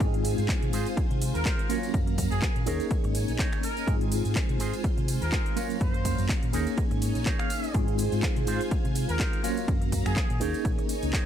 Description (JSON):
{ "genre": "filtered disco house", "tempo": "124 BPM", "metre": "4/4", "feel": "swing 56% on 16ths", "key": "Ab mixolydian", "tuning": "A4 = 441 Hz", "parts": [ { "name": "warm horn section", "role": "melody", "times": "0.0-10.4 s", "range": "Ab4 to F5", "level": "-36 LUFS", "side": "equal", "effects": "sidechain pumping, ping-pong delay" }, { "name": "tine electric piano", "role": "accompaniment", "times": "0.0-11.3 s", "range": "Gb3 to F5", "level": "-32 LUFS", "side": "right 1 dB", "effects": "overdrive, fast stereo tremolo, phaser, sidechain pumping" }, { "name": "string machine, full ensemble", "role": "sustained chords", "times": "0.0-11.3 s", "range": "Gb3 to Bb5", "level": "-37 LUFS", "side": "equal", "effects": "ensemble chorus, sidechain pumping" }, { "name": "electric guitar with an envelope filter", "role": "riff", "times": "0.0-11.3 s", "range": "Eb4 to Db5", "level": "-37 LUFS", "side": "right 5 dB", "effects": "sidechain pumping" }, { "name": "hollow-body short-scale fingered electric bass", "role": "bass", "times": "0.0-11.1 s", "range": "Bb1 to C3", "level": "-30 LUFS", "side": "equal", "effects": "sidechain pumping" }, { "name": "electronic kick drum", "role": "drums", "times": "0.0-11.2 s", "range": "none", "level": "-28 LUFS", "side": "equal", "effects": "overdrive" }, { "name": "house drum kit", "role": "drums", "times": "0.0-11.2 s", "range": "finger snaps, handclaps, hi-hat, ride cymbal, shaker", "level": "-36 LUFS", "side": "equal", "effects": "overdrive, sidechain pumping on hats, sidechain pumping on perc, sidechain pumping on cymbals" }, { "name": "tambourine", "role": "percussion", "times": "0.0-11.2 s", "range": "none", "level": "-46 LUFS", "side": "right 9 dB", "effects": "sidechain pumping on perc" } ], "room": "little or no reverb", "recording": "none", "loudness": "-24 LUFS", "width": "side -10 dB against mid", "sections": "0.0-11.3 A section", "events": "none", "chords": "0.0 Ab6; 1.7 Gbmaj7; 2.7 Eb7sus4; 3.9 Ab6; 5.6 Gbmaj7; 6.5 Eb7sus4; 7.7 Ab6; 9.4 Gbmaj7; 10.4 Eb7sus4", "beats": "| 0.00 0.49 0.97 1.46 | 1.94 2.42 2.91 3.39 | 3.88 4.36 4.84 5.33 | 5.81 6.29 6.78 7.26 | 7.75 8.23 8.71 9.20 | 9.68 10.16 10.65 11.13" }